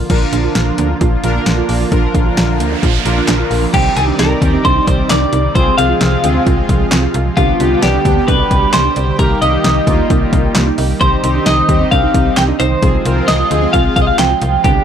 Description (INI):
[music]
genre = synth-pop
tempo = 132 BPM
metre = 4/4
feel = straight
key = C minor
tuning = A4 = 439 Hz
[part]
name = lush unison pad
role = sustained chords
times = 0.0-14.8 s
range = B2 to D5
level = -21 LUFS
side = equal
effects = chorus
[part]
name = soft round pluck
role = arpeggios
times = 0.0-14.8 s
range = D3 to F5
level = -22 LUFS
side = right 14 dB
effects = chorus, tape echo
[part]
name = slap-like FM bass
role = bass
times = 0.0-14.8 s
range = Bb1 to Eb2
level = -17 LUFS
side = left 1 dB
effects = none
[part]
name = analog synth brass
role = accompaniment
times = 0.1-14.8 s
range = Bb3 to Bb4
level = -20 LUFS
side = left 1 dB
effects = chorus
[part]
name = deep house drum kit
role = drums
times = 0.1-14.8 s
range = crash cymbal, handclaps, hi-hat, kick drum, snare drum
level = -16 LUFS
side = left 1 dB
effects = overdrive
[part]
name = noise sweep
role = sound effects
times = 2.2-3.7 s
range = none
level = -24 LUFS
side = right 3 dB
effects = none
[part]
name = twelve-string electric guitar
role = melody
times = 3.7-14.8 s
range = F4 to G5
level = -16 LUFS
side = right 1 dB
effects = tape echo
[sound]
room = light reverb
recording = none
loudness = -11 LUFS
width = side -8 dB against mid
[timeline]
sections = 0.1-3.7 A section; 3.7-14.8 B section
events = noise sweep 2.2-3.7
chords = 0.1 Bb; 3.7 Cmadd9; 5.6 Fm/C; 7.4 G/C; 9.2 Eb/C; 11.0 Cmadd9; 12.8 Fm/C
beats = | 0.10 0.55 1.01 1.46 | 1.92 2.37 2.83 3.28 | 3.74 4.19 4.64 5.10 | 5.55 6.01 6.46 6.92 | 7.37 7.83 8.28 8.74 | 9.19 9.64 10.10 10.55 | 11.01 11.46 11.92 12.37 | 12.83 13.28 13.74 14.19 | 14.64